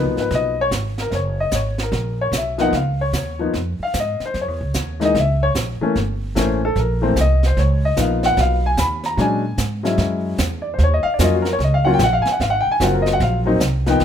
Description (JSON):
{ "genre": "jazz piano trio", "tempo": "149 BPM", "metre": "4/4", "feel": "swing 65% on 8ths", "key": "Db mixolydian", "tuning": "A4 = 440 Hz", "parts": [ { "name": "warm grand piano", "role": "melody", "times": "0.0-14.0 s", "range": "Fb3 to Cb6", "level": "-19 LUFS", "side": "left 2 dB", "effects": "none" }, { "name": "upright bass", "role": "bass", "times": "0.0-14.0 s", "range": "Gb1 to Bb2", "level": "-20 LUFS", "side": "right 1 dB", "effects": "none" }, { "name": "jazz brush drum kit", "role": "drums", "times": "0.2-14.0 s", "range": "brushed snare drum, hi-hat, kick drum, snare drum", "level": "-26 LUFS", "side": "right 2 dB", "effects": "none" } ], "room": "little or no reverb", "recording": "minimal, uncompressed stereo recording", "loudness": "-16 LUFS", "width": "side -9 dB against mid", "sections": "0.0-14.0 A section", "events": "grand piano solo 0.0-14.0", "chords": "0.0 Db13 (rootless); 1.1 Gbadd9; 2.7 Dbadd9; 4.3 Gb13 (rootless); 6.0 Gm6; 7.6 Db13; 9.2 Bbm7b13; 10.8 Ebm7; 12.4 Ab13", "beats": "0.32 0.72 | 1.13 1.53 1.93 2.33 | 2.74 3.14 3.54 3.95 | 4.35 4.75 5.16 5.56 | 5.96 6.36 6.77 7.17 | 7.57 7.97 8.38 8.78 | 9.18 9.59 9.99 10.39 | 10.79 11.20 11.60 12.00 | 12.40 12.81 13.21 13.61 | 14.02" }